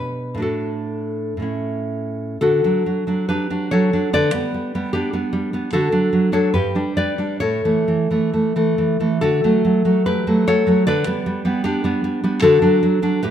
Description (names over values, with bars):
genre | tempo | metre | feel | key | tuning
romantic piece for solo classical guitar | 59-78 BPM | 2/4 | rubato | D major | A4 = 440 Hz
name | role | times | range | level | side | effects
nylon-string guitar | solo | 0.0-13.3 s | G2 to D5 | -17 LUFS | equal | none
room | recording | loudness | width
moderate recital hall reverb, RT60 1.6 s | close, detailed microphones | -17 LUFS | side -10 dB against mid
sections
0.0-2.4 A section; 2.4-13.3 B section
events
none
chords
0.4 D/A; 1.4 A; 2.4 D; 4.1 G/D; 5.7 D; 6.5 G; 7.4 A; 9.2 D; 10.9 G/D; 12.4 D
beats
| 0.44 1.45 | 2.43 3.29 | 4.13 4.93 | 5.73 6.54 | 7.41 8.33 | 9.22 10.07 | 10.87 11.65 | 12.42 13.22